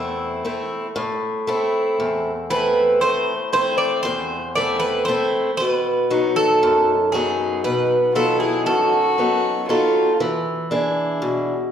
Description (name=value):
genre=greek folk, Greek bouzouki band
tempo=117 BPM (eighths)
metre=9/8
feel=straight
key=A harmonic minor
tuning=A4 = 439 Hz
part: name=Greek bouzouki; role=melody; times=0.0-10.2 s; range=G#4 to D5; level=-19 LUFS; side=right 2 dB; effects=none
part: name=picked acoustic archtop guitar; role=accompaniment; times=0.0-11.7 s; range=E2 to G#4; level=-21 LUFS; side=left 2 dB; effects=none
part: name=warm violin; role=second line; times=8.1-10.2 s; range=E4 to F#4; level=-24 LUFS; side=left 4 dB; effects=none
room=wet recital hall reverb, RT60 1.4 s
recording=recorded in a church or concert hall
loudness=-17 LUFS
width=side -8 dB against mid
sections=1.0-11.7 A section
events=none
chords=0.0 Am; 5.6 B; 10.2 E7